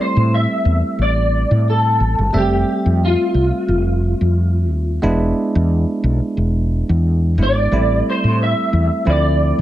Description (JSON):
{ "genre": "straight-eighth soul blues", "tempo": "89 BPM", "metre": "4/4", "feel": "swing 55% on 16ths", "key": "A minor", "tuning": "A4 = 441 Hz", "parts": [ { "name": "electric guitar through a small old amp", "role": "melody", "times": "0.0-9.6 s", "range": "F4 to E5", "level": "-19 LUFS", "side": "equal", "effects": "ensemble chorus, plate reverb" }, { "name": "barky tine electric piano", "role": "accompaniment", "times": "0.0-9.6 s", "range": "F3 to E5", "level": "-21 LUFS", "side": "right 2 dB", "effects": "plate reverb" }, { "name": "woody fretless electric bass", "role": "bass", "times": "0.2-9.6 s", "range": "E1 to A2", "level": "-16 LUFS", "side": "equal", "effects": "none" } ], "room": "light reverb", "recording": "none", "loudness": "-14 LUFS", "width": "side -13 dB against mid", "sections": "0.0-9.6 A section", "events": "none", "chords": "0.0 Am7; 2.3 Fmaj7; 5.0 E7; 7.7 Am7; 9.1 Dm7", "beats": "0.32 0.99 1.66 | 2.34 3.01 3.68 4.36 | 5.03 5.70 6.38 7.05 | 7.72 8.39 9.06" }